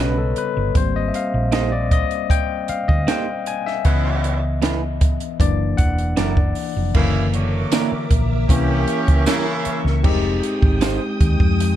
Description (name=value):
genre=lush 1970s-style soul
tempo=78 BPM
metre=4/4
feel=straight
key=unclear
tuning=A4 = 441 Hz
part: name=barky tine electric piano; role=accompaniment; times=0.0-11.8 s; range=C#3 to G#5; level=-23 LUFS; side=moving between left 10 dB and left 1 dB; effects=overdrive, auto-pan
part: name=electric guitar through a small old amp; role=riff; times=0.0-11.0 s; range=F#3 to B#4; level=-27 LUFS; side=right 7 dB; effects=none
part: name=hollow-body short-scale fingered electric bass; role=bass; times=0.0-11.8 s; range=E1 to F2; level=-21 LUFS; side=equal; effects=none
part: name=compact cocktail drum kit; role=drums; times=0.4-11.8 s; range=crash cymbal, hi-hat, kick drum, snare drum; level=-19 LUFS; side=right 1 dB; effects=none
part: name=warm horn section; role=stabs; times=3.9-9.8 s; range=C#3 to G4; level=-26 LUFS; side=right 3 dB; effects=none
part: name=string machine, full ensemble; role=sustained chords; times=6.9-11.8 s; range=Ab3 to Eb6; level=-28 LUFS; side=equal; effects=ensemble chorus
part: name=tambourine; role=percussion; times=7.7-11.0 s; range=none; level=-33 LUFS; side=left 7 dB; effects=none
room=studio reverb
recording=dark, warm production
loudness=-17 LUFS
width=side -12 dB against mid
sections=0.0-6.9 A section; 6.9-10.0 B section; 10.0-11.8 C section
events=tine electric piano solo 0.0-6.9, 6.9-10.0; band accent 3.9-6.9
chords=0.0 D#7alt; 0.8 G#maj9; 3.9 C#m7; 5.4 F#7b13; 8.5 C7b9; 10.0 Fm9